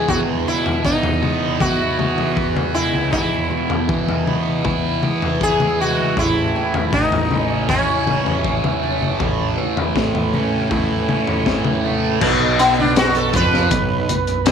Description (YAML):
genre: psychedelic rock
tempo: 79 BPM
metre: 4/4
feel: straight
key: unclear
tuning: A4 = 440 Hz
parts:
  - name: sitar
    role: melody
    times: 0.0-14.5 s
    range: B3 to B4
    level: -21 LUFS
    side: left 1 dB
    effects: slapback echo
  - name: fuzz guitar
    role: riff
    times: 0.0-14.5 s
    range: E2 to E4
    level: -21 LUFS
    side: right 2 dB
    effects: distortion, phaser
  - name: fuzz picked electric bass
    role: bass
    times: 0.0-14.5 s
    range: F#1 to E3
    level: -23 LUFS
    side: right 2 dB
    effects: overdrive
  - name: crunchy breakbeat drum kit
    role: drums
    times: 0.1-14.5 s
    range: crash cymbal, hi-hat, kick drum, snare drum, toms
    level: -22 LUFS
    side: left 3 dB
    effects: none
  - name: congas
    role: percussion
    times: 0.5-14.5 s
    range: none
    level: -32 LUFS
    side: left 7 dB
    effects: none
  - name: overdriven combo organ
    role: sustained chords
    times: 12.2-14.5 s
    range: B3 to B4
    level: -24 LUFS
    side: right 16 dB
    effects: none
  - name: deep rumbling drone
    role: drone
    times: 13.2-14.5 s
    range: B1 to F#2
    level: -28 LUFS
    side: right 1 dB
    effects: none
room: small room ambience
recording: 1960s-style stereo with parts hard left and right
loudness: -16 LUFS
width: side -7 dB against mid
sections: 0.0-12.2 A section; 12.2-14.5 B section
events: sitar solo 12.2-14.5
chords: 0.0 E; 6.2 A; 12.2 B5